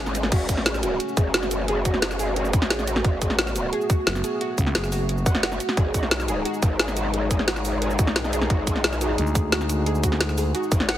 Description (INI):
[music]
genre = dark technical drum and bass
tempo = 176 BPM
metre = 4/4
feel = straight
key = F# minor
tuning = A4 = 440 Hz
[part]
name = dark analog pad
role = sustained chords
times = 0.0-11.0 s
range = G#3 to G#4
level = -30 LUFS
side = left 2 dB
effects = chorus, sidechain pumping
[part]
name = growl bass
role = bass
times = 0.0-11.0 s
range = F#1 to B1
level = -27 LUFS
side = equal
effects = chorus, overdrive, sidechain pumping
[part]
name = drum and bass drum kit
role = drums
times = 0.1-11.0 s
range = crash cymbal, hi-hat, shaker, snare drum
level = -25 LUFS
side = equal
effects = none
[part]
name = soft round pluck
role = arpeggios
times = 0.3-11.0 s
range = F#4 to F#5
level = -30 LUFS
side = right 2 dB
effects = ensemble chorus, sidechain pumping, digital delay
[part]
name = electronic kick drum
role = drums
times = 0.3-10.8 s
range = none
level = -22 LUFS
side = equal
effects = none
[part]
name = growling FM bass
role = bass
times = 4.1-5.2, 9.2-10.5 s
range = F#1 to D2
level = -24 LUFS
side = equal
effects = none
[sound]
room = light reverb, digital ambience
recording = heavily compressed radio sound, multiband compression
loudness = -20 LUFS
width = side -12 dB against mid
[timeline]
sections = 0.0-11.0 A section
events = break 0.0-0.3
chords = 0.3 F#m; 5.8 G#dim